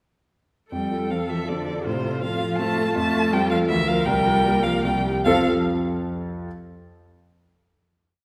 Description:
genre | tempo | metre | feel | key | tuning
quick classical-period movement for piano quartet | 144-166 BPM | 3/4 | rubato | F major | A4 = 440 Hz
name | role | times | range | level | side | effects
rich violin | melody | 0.7-5.5 s | C5 to A5 | -28 LUFS | equal | none
rich cello | second line | 0.7-5.5 s | C3 to A3 | -29 LUFS | equal | none
warm concert grand piano | accompaniment | 0.7-5.5 s | C2 to F5 | -27 LUFS | equal | none
warm viola | accompaniment | 0.7-5.5 s | F4 to Bb4 | -32 LUFS | equal | none
room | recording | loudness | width
wet scoring stage reverb, RT60 1.7 s | heard from further back in the room | -22 LUFS | mono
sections
0.7-5.3 A section; 5.3-6.5 final chord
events
slowing down 2.4-5.3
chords
0.7 F; 1.9 F/A; 3.0 F; 3.7 Bb/D; 4.1 C7sus4; 4.9 C7; 5.3 F

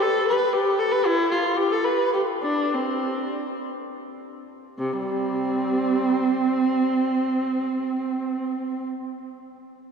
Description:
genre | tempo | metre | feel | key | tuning
classical, baroque-style suite movement for unaccompanied viola | 54-79 BPM (dotted quarters) | 6/8 | rubato | C major | A4 = 440 Hz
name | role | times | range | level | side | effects
warm viola | solo | 0.0-8.8 s | C3 to B4 | -22 LUFS | right 1 dB | none
room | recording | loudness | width
wet cathedral reverb, RT60 4.7 s | heard from further back in the room | -21 LUFS | side -6 dB against mid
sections
0.0-4.8 A section; 4.8-9.0 B section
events
slowing down 0.3-4.8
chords
none

